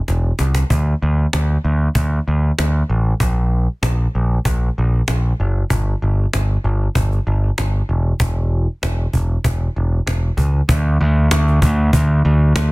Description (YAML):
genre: quiet-loud alternative rock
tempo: 96 BPM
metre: 4/4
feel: straight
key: unclear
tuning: A4 = 445 Hz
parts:
  - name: growling picked electric bass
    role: bass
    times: 0.1-12.7 s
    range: E1 to D2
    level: -15 LUFS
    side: equal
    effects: overdrive
  - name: cajon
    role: drums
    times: 0.1-12.7 s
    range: none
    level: -20 LUFS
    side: equal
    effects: none
room: studio ambience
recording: dense, heavily limited modern master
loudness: -15 LUFS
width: side -23 dB against mid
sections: 0.0-10.7 A section; 10.7-12.7 B section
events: drum fill 0.1-0.7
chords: none